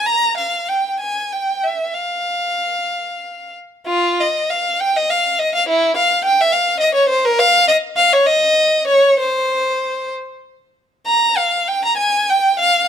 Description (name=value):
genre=classical, baroque-style suite movement for unaccompanied violin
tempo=58-71 BPM (dotted quarters)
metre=6/8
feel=rubato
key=F minor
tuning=A4 = 441 Hz
part: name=rich violin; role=solo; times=0.0-12.9 s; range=E4 to Bb5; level=-14 LUFS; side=equal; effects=none
room=moderate stone room reverb, RT60 1.3 s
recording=close, detailed microphones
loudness=-14 LUFS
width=side -9 dB against mid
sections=0.0-3.9 A section; 3.9-12.9 B section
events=none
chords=none